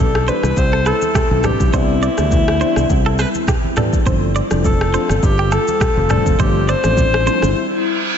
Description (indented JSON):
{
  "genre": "afrobeats",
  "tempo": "103 BPM",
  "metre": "4/4",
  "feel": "swing 55% on 16ths",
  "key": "C major",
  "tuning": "A4 = 441 Hz",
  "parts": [
    { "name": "breathy alto saxophone", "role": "melody", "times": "0.0-7.9 s", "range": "E4 to C5", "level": "-20 LUFS", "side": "left 2 dB", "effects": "ping-pong delay" },
    { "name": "soft electric-piano-like synth keys", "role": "accompaniment", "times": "0.0-7.5 s", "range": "E3 to D4", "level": "-24 LUFS", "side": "left 1 dB", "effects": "chorus, phaser" },
    { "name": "glassy FM pad", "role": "sustained chords", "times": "0.1-8.2 s", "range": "G3 to F4", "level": "-23 LUFS", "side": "left 2 dB", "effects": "ensemble chorus, built-in reverb" },
    { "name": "fingered electric bass", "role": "bass", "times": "0.0-7.5 s", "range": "F1 to D2", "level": "-18 LUFS", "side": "equal", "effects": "none" },
    { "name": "afro-pop drum kit", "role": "drums", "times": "0.2-7.6 s", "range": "kick drum, rim click, shaker, toms", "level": "-19 LUFS", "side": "equal", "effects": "none" },
    { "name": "direct-recorded clean electric guitar", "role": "riff", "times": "0.3-7.4 s", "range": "G4 to D5", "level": "-26 LUFS", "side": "right 4 dB", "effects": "ping-pong delay" },
    { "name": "congas", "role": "percussion", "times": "0.4-7.6 s", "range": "none", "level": "-26 LUFS", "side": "right 2 dB", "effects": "none" },
    { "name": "reverse cymbal", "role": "sound effects", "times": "7.7-8.2 s", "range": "none", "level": "-20 LUFS", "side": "right 4 dB", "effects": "none" }
  ],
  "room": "moderate lush hall reverb, RT60 2.5 s",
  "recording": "dreamy mix soaked in reverb, nothing above 7.9 kHz",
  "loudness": "-13 LUFS",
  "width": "side -8 dB against mid",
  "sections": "0.0-8.2 A section",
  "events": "break 7.6-8.2; reverse cymbal 7.7-8.2",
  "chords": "0.0 Cmaj7; 4.1 G7sus4"
}